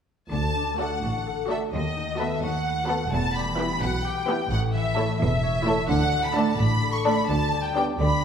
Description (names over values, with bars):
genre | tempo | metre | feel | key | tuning
classical | 86 BPM (dotted quarters) | 6/8 | straight | D major | A4 = 441 Hz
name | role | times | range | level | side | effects
clear symphonic violin section | melody | 0.3-8.2 s | D#5 to C#6 | -27 LUFS | left 1 dB | none
concert harp | arpeggios | 0.3-8.2 s | A2 to D5 | -30 LUFS | left 4 dB | none
rich symphonic cello section | bass | 0.3-8.2 s | D2 to D3 | -30 LUFS | right 2 dB | none
rich symphonic double bass section | bass | 0.3-8.2 s | E1 to D#2 | -29 LUFS | right 2 dB | none
warm symphonic violin section | second line | 0.8-7.9 s | G4 to D5 | -31 LUFS | left 2 dB | none
warm symphonic viola section | accompaniment | 0.8-7.9 s | A3 to F#4 | -30 LUFS | right 3 dB | none
room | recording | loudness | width
wet scoring stage reverb, RT60 2.0 s | minimal, uncompressed stereo recording | -22 LUFS | side -7 dB against mid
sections
0.3-8.2 A section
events
none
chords
0.3 D; 1.7 B7/D#; 3.1 Em; 4.5 A; 5.9 D5; 7.3 G/D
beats
| 0.31 1.02 | 1.73 2.42 | 3.12 3.82 | 4.51 5.20 | 5.90 6.59 | 7.29 7.99